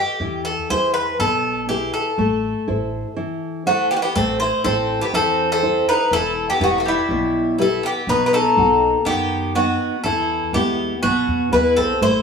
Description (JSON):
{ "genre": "greek folk, Greek bouzouki band", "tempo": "122 BPM", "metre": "4/4", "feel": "straight", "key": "A dorian sharp4", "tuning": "A4 = 437 Hz", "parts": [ { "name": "Greek bouzouki", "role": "melody", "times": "0.0-12.2 s", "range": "E4 to C5", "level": "-19 LUFS", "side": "left 2 dB", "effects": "none" }, { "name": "nylon-string guitar", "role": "accompaniment", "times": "0.0-12.2 s", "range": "B2 to D#5", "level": "-23 LUFS", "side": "right 2 dB", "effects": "none" }, { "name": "upright bass", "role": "bass", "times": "0.2-12.2 s", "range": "E1 to F#2", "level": "-29 LUFS", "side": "equal", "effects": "none" }, { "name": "Greek bouzouki", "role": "second line", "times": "3.7-12.2 s", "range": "G3 to E4", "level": "-24 LUFS", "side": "equal", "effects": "none" } ], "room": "moderate stone room reverb, RT60 1.1 s", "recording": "band playing live in one room, small room ambience", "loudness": "-17 LUFS", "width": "side -6 dB against mid", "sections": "0.0-4.1 A section; 4.1-12.2 A section", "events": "none", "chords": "0.2 E; 2.2 Am; 6.1 Em; 8.1 B; 10.1 E" }